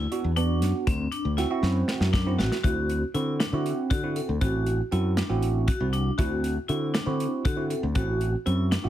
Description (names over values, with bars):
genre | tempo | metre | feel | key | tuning
progressive instrumental, band music in an uneven meter | 237 BPM (eighths) | 7/8 | straight | D mixolydian | A4 = 442 Hz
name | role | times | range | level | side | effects
vibraphone with hard mallets | arpeggios | 0.0-8.9 s | C4 to A4 | -32 LUFS | left 3 dB | none
modern bright fingered electric bass | bass | 0.0-8.9 s | A1 to D3 | -26 LUFS | left 1 dB | none
bell-like tine electric piano | accompaniment | 0.1-8.9 s | B3 to F#4 | -30 LUFS | right 5 dB | phaser
natural country drum kit | drums | 0.1-8.8 s | hi-hat, kick drum, snare drum | -29 LUFS | equal | none
room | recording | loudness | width
light reverb | heavily compressed radio sound, multiband compression | -23 LUFS | side -12 dB against mid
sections
0.0-2.6 A section; 2.6-8.9 B section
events
drum fill 1.6-2.6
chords
0.0 Bm; 0.9 D7